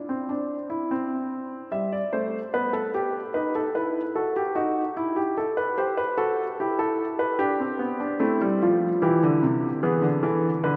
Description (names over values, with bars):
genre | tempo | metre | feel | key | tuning
classical, baroque-style 3-part fugue for grand piano | 74 BPM | 4/4 | straight | unclear | A4 = 439 Hz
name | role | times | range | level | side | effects
warm baby grand piano | solo | 0.1-10.8 s | C3 to E5 | -25 LUFS | equal | none
room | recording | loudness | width
wet church reverb, RT60 3.2 s | none | -25 LUFS | mono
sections
0.0-10.8 A section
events
none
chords
0.0 N.C.; 1.7 Em/G; 3.3 B/D#; 5.0 Em; 8.2 Am (rootless); 9.8 E